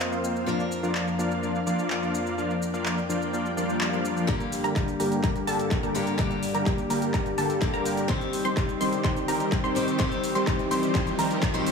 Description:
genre	EDM, festival progressive house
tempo	126 BPM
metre	4/4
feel	straight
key	G minor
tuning	A4 = 440 Hz
part	picked swing-style acoustic guitar	accompaniment	0.0-11.7 s	D3 to Bb4	-32 LUFS	left 3 dB	sidechain pumping, digital delay
part	lush unison pad	sustained chords	0.0-11.7 s	F2 to G5	-34 LUFS	left 1 dB	chorus, sidechain pumping
part	supersaw chords	riff	0.0-11.7 s	D3 to F5	-27 LUFS	equal	sidechain pumping, low-pass filter, digital delay
part	big-room dance drum kit	drums	0.0-11.7 s	handclaps, hi-hat, shaker	-35 LUFS	equal	overdrive, small room reverb
part	swell and riser	sound effects	3.5-11.7 s	none	-36 LUFS	left 1 dB	none
part	wide unison pluck	arpeggios	4.3-11.7 s	A5 to C6	-32 LUFS	equal	sidechain pumping, digital delay
part	electronic kick drum	drums	4.3-11.5 s	none	-27 LUFS	equal	overdrive, small room reverb
room	moderate lush hall reverb, RT60 2.3 s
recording	studio reverb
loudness	-24 LUFS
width	side -5 dB against mid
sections	0.0-4.3 A section; 4.3-11.7 B section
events	swell 3.5-4.3; build-up 4.3-11.7; drum fill 4.3-11.7; filter sweep on supersaw synth 4.3-11.7; filter sweep on analog synth pad 4.3-11.7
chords	0.5 Bb/F; 4.3 Gm; 8.1 Cm

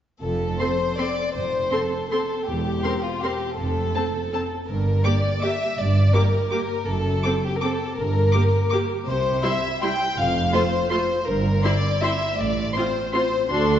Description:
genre	classical, orchestral ballroom waltz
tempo	163 BPM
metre	3/4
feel	uneven beats, rubato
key	F major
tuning	A4 = 439 Hz
part	warm chamber violin section	second line	0.2-13.8 s	F4 to G5	-24 LUFS	left 2 dB	none
part	clear chamber double bass section	bass	0.2-13.8 s	E1 to D2	-26 LUFS	right 1 dB	none
part	rich chamber cello section	bass	0.2-13.8 s	D2 to C3	-27 LUFS	right 2 dB	none
part	rich chamber violin section	melody	0.6-13.8 s	A5 to D6	-31 LUFS	left 2 dB	none
part	rich symphonic viola section	accompaniment	0.6-13.8 s	G3 to Bb4	-28 LUFS	right 1 dB	none
room	wet concert hall reverb, RT60 1.8 s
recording	recorded in a church or concert hall, nothing above 7.6 kHz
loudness	-20 LUFS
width	side -10 dB against mid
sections	0.2-13.8 A section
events	none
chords	0.2 F; 2.5 C7/E; 3.6 F; 4.7 Gm; 6.9 D7/F# (rootless); 8.0 Gm; 9.1 C; 10.2 F; 11.3 C7/G; 12.4 F/A

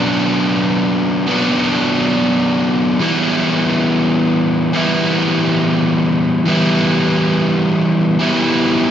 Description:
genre	rock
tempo	free time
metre	none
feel	none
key	E minor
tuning	A4 = 436 Hz
part	overdriven electric guitar	solo	0.0-8.9 s	B2 to E4	-13 LUFS	equal	diffuse ambient delay
room	wet lush hall reverb, RT60 2.4 s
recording	dreamy mix soaked in reverb, nothing above 7.6 kHz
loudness	-13 LUFS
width	side -9 dB against mid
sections	0.0-3.0 A section; 3.0-8.9 B section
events	none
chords	0.0 Bm; 3.0 Em

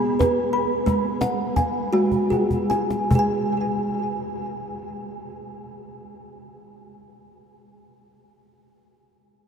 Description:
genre	world meditative, meditative tuned percussion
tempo	48-62 BPM (dotted quarters)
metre	6/8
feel	straight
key	G# minor pentatonic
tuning	A4 = 437 Hz
part	kalimba	arpeggios	0.0-7.9 s	G#3 to B5	-22 LUFS	equal	tape echo
part	cajon	percussion	0.0-3.5 s	none	-28 LUFS	left 1 dB	none
room	wet huge ambient reverb, RT60 8.3 s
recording	in a vast, echoing space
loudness	-20 LUFS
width	side -7 dB against mid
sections	0.0-3.1 A section; 3.1-8.1 B section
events	slowing down 0.0-3.1; drum fill 2.1-3.1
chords	0.0 G#m/B; 0.9 G#m; 3.1 N.C.

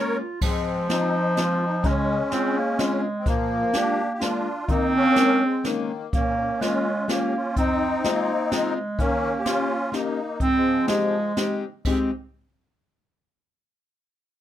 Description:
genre	musette waltz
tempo	126 BPM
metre	3/4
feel	swing 55% on 8ths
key	Ab major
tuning	A4 = 439 Hz
part	musette accordion	melody	0.0-12.1 s	Eb3 to Db5	-26 LUFS	left 2 dB	none
part	mellow clarinet	second line	0.0-12.1 s	F3 to F4	-24 LUFS	right 2 dB	none
part	fingerpicked plugged-in steel-string acoustic guitar	accompaniment	0.0-12.1 s	F2 to G4	-29 LUFS	left 4 dB	none
part	jazz brush drum kit	drums	0.4-12.0 s	crash cymbal, hi-hat, kick drum, snare drum	-28 LUFS	equal	none
room	moderate studio reverb, RT60 0.6 s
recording	rough home demo mix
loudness	-21 LUFS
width	side -11 dB against mid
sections	0.4-11.9 A section; 11.9-13.3 B section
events	none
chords	0.4 Ab6; 1.9 Dbmaj7; 3.3 Bb7; 4.7 Eb7sus4; 6.1 Bbm7; 7.6 Fm7; 9.0 Eb7; 10.4 Abmaj7

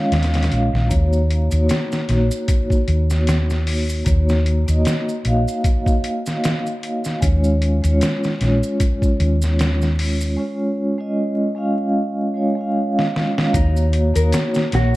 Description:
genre	trip hop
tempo	76 BPM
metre	4/4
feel	swing 55% on 16ths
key	Eb minor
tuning	A4 = 440 Hz
part	vibraphone with soft mallets	accompaniment	0.0-15.0 s	Ab3 to F5	-21 LUFS	equal	tremolo, vintage 12-bit sampler grit, tape echo
part	hollow-body short-scale fingered electric bass	bass	0.1-14.9 s	Bb1 to Eb2	-17 LUFS	equal	none
part	trip hop sampler-style drum kit	drums	0.1-14.9 s	hi-hat, kick drum, snare drum	-21 LUFS	equal	studio reverb
part	maracas	percussion	0.9-14.7 s	none	-37 LUFS	right 2 dB	none
part	nylon-string guitar	arpeggios	13.5-15.0 s	Eb4 to Bb4	-28 LUFS	left 4 dB	ping-pong delay
part	mellow electric guitar	melody	14.7-15.0 s	Gb4	-22 LUFS	right 3 dB	none
room	small room ambience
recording	dark, warm production, vinyl crackle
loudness	-16 LUFS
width	side -18 dB against mid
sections	0.0-13.5 A section; 13.5-15.0 B section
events	break 10.4-13.5; drum fill 12.9-13.5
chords	0.0 Db; 0.9 Ebm7; 7.2 Db; 13.5 Ebm7

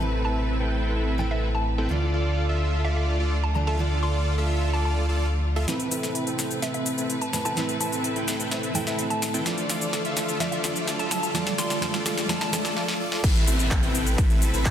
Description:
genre	EDM, festival progressive house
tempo	127 BPM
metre	4/4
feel	straight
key	A minor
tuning	A4 = 436 Hz
part	hollow square pluck	melody	0.0-12.5 s	E5 to C6	-34 LUFS	equal	chorus, dub echo
part	fingerpicked steel-string acoustic guitar	accompaniment	0.0-12.8 s	A2 to D5	-31 LUFS	right 2 dB	sidechain pumping
part	bright studio string section	sustained chords	0.0-14.7 s	C3 to B4	-35 LUFS	left 2 dB	sidechain pumping
part	dense compressed supersaw	riff	0.0-14.7 s	C4 to G5	-29 LUFS	equal	sidechain pumping, low-pass filter, dub echo
part	saturated sub bass	bass	0.0-14.7 s	A1 to D2	-25 LUFS	equal	sidechain pumping, high-pass filter
part	big-room dance drum kit	drums	5.7-14.7 s	crash cymbal, handclaps, hi-hat, ride cymbal, shaker, snare drum	-29 LUFS	left 2 dB	overdrive, high-pass filter on hats, high-pass filter on perc, high-pass filter on cymbals, high-pass filter on snare
part	riser and downlifter	sound effects	7.7-14.7 s	none	-35 LUFS	right 1 dB	none
part	electronic kick drum	drums	13.2-14.7 s	none	-22 LUFS	equal	overdrive
room	moderate lush hall reverb, RT60 1.8 s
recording	dense, heavily limited modern master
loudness	-22 LUFS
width	side -10 dB against mid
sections	0.0-5.7 A section; 5.7-13.2 B section; 13.2-14.7 C section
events	filter sweep on supersaw synth 0.0-5.7, 5.7-13.2; build-up 5.7-13.2; drum fill 5.7-12.8, 12.8-13.2; riser 7.7-12.8; drop 13.2-14.7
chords	0.0 Amadd9; 1.9 Dm; 5.7 Amadd9; 9.5 Dm; 13.2 Amadd9

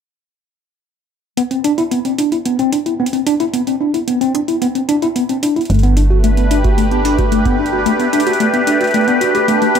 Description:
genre	IDM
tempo	111 BPM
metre	4/4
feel	straight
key	unclear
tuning	A4 = 440 Hz
part	mellow tine electric piano	arpeggios	1.4-9.8 s	A3 to G4	-15 LUFS	left 1 dB	medium stereo tremolo, low-pass filter, tape echo
part	electronic hi-hat	drums	1.4-9.8 s	none	-27 LUFS	right 2 dB	none
part	phased analog pad	sustained chords	5.7-9.8 s	A3 to B4	-16 LUFS	equal	phaser, chorus
part	woody FM bass	bass	5.7-7.9 s	G1	-15 LUFS	right 1 dB	none
part	electronic kick drum	drums	6.6-7.6 s	none	-18 LUFS	equal	none
room	moderate spring reverb, RT60 1.6 s, digital ambience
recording	echo-heavy mix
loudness	-13 LUFS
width	side -7 dB against mid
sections	1.4-9.8 A section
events	none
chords	1.4 Cmaj9; 5.7 Gadd9

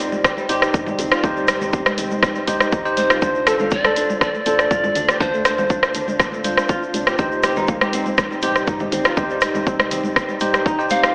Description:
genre	afro house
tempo	121 BPM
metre	4/4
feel	straight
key	unclear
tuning	A4 = 439 Hz
part	ethereal airy pad	sustained chords	0.0-11.1 s	C3 to D5	-35 LUFS	equal	none
part	flamenco guitar	arpeggios	0.0-11.1 s	G3 to A4	-28 LUFS	equal	sidechain pumping, tape echo
part	bell-like tine electric piano	stabs	0.0-11.1 s	D4 to C5	-26 LUFS	equal	sidechain pumping, tape echo
part	woody FM bass	bass	0.0-11.1 s	A1 to G2	-39 LUFS	equal	sidechain pumping
part	house drum kit	drums	0.0-11.1 s	hi-hat, rim click	-22 LUFS	equal	none
part	tube shaker	percussion	0.0-11.1 s	none	-40 LUFS	equal	none
part	congas	percussion	0.1-11.0 s	none	-32 LUFS	equal	none
part	electronic kick drum	drums	0.2-10.8 s	none	-25 LUFS	equal	none
part	mellow polished pan flute	melody	3.0-6.2, 10.9-11.1 s	C5 to F5	-24 LUFS	equal	none
room	wet lush hall reverb, RT60 2.2 s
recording	dreamy mix soaked in reverb, AM radio sound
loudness	-19 LUFS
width	mono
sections	0.0-11.1 A section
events	none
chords	0.0 Cm; 3.2 Dm7; 7.2 Cm

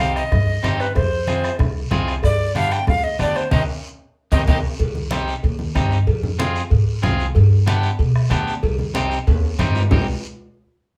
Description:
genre	latin, cumbia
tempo	188 BPM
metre	4/4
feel	straight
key	C harmonic minor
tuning	A4 = 443 Hz
part	breathy alto recorder	melody	0.0-4.6 s	B4 to G5	-25 LUFS	equal	none
part	electric guitar at the edge of break-up	accompaniment	0.0-10.1 s	B3 to Ab4	-27 LUFS	equal	none
part	upright bass	bass	0.0-10.1 s	C2 to B2	-23 LUFS	equal	none
part	bombo	percussion	0.0-10.0 s	none	-25 LUFS	equal	none
part	congas	percussion	0.0-10.0 s	none	-27 LUFS	equal	none
part	cowbell and timbales	percussion	0.0-10.0 s	none	-34 LUFS	equal	none
part	guiro	percussion	0.0-10.0 s	none	-40 LUFS	equal	none
room	wet studio reverb, RT60 0.5 s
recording	band playing live in one room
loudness	-19 LUFS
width	mono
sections	0.0-4.8 A section; 4.8-9.9 B section; 9.9-11.0 C section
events	band accent 3.5-4.8; drum fill 4.0-4.8, 9.3-9.9; clean electric guitar fill 4.2-4.8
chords	0.0 Cm; 1.0 Fm; 2.2 G; 3.5 Cm; 6.1 Fm; 7.4 G; 8.6 Cm

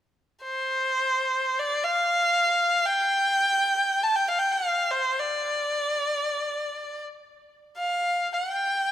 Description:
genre	chinese traditional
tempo	free time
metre	none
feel	none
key	unclear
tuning	A4 = 441 Hz
part	clear erhu	melody	0.4-8.9 s	C5 to A5	-23 LUFS	equal	none
room	wet plate reverb, RT60 2.9 s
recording	heard from further back in the room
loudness	-22 LUFS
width	side -11 dB against mid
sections	0.0-8.9 A section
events	none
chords	none

